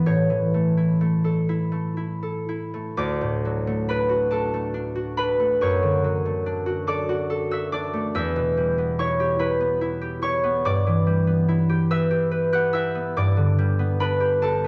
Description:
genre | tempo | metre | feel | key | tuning
classical, solo harp piece | 38-48 BPM (dotted quarters) | 6/8 | rubato | D major | A4 = 440 Hz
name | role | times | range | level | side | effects
concert harp | solo | 0.0-14.7 s | D2 to F#6 | -23 LUFS | equal | none
room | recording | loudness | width
wet stone room reverb, RT60 1.2 s | none | -23 LUFS | mono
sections
0.0-3.0 A section; 3.0-14.7 B section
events
none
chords
0.1 A; 3.0 D; 5.6 D/F#; 8.1 Em; 10.7 Em/G; 13.2 G

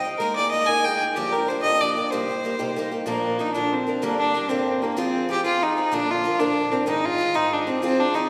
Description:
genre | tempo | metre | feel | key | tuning
celtic folk, Celtic jig | 126 BPM (dotted quarters) | 6/8 | straight | unclear | A4 = 440 Hz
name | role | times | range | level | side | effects
rich fiddle | melody | 0.0-8.3 s | Bb3 to Ab5 | -24 LUFS | equal | none
picked old ladder-braced acoustic guitar | accompaniment | 0.0-8.3 s | G2 to Bb4 | -29 LUFS | equal | none
room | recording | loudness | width
wet concert hall reverb, RT60 1.9 s | recorded in a church or concert hall | -23 LUFS | mono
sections
0.0-3.1 A section; 3.1-8.3 B section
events
none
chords
0.2 Absus2; 1.2 Gm7; 2.1 Cm7; 3.1 Bb; 4.0 Gm; 5.0 Fm; 5.9 Bb; 6.9 Ab

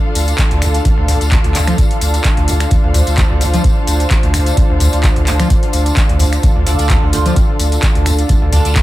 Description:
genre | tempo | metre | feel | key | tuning
acid house | 129 BPM | 4/4 | swing 54% on 16ths | D minor | A4 = 440 Hz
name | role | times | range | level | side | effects
lush unison pad | sustained chords | 0.0-8.8 s | D3 to C5 | -22 LUFS | equal | chorus, sidechain pumping
muted chamber string section | texture | 0.0-8.8 s | D4 to F5 | -23 LUFS | equal | sidechain pumping
saturated sub bass | bass | 0.2-8.8 s | D2 | -15 LUFS | equal | sidechain pumping
booming analog drum machine | drums | 0.2-8.8 s | finger snaps, handclaps, hi-hat | -22 LUFS | equal | none
tambourine | percussion | 0.2-8.8 s | none | -27 LUFS | left 6 dB | none
electronic kick drum | drums | 0.4-8.8 s | none | -14 LUFS | equal | none
overdriven acid bass | riff | 0.5-8.8 s | D2 to F3 | -17 LUFS | equal | distortion, lush chorus, sidechain pumping
band-passed chord stab | stabs | 6.7-8.8 s | D4 to C5 | -23 LUFS | right 4 dB | phaser, ensemble chorus, ping-pong delay
room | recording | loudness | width
little or no reverb | none | -11 LUFS | side -16 dB against mid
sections
0.0-8.8 A section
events
none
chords
0.0 Dm

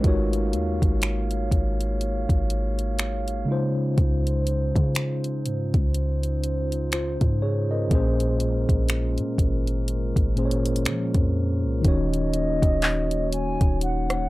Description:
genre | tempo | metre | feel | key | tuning
contemporary R&B | 61 BPM | 4/4 | swing 58% on 16ths | Eb dorian | A4 = 440 Hz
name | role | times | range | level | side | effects
mellow tine electric piano | accompaniment | 0.0-14.3 s | Bb2 to Eb5 | -27 LUFS | equal | fast stereo tremolo
glass harmonica | sustained chords | 0.0-14.3 s | Ab3 to F5 | -33 LUFS | equal | none
warm 808-style bass | bass | 0.0-14.3 s | Eb1 to F3 | -26 LUFS | equal | tube saturation
smooth R&B drum kit | drums | 0.0-14.3 s | finger snaps, handclaps, hi-hat, kick drum, rim click | -23 LUFS | equal | none
downlifter | sound effects | 0.0-4.0 s | none | -52 LUFS | right 1 dB | none
hollow clarinet-like synth lead | melody | 11.9-14.3 s | Eb5 to Ab5 | -28 LUFS | equal | chorus
room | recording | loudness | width
little or no reverb | dry, gritty hardware recording | -21 LUFS | side -18 dB against mid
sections
0.0-11.8 A section; 11.8-14.3 B section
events
none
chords
0.0 Ab13sus4; 3.5 Dbmaj9; 7.9 Bbm7; 11.8 Ebm7

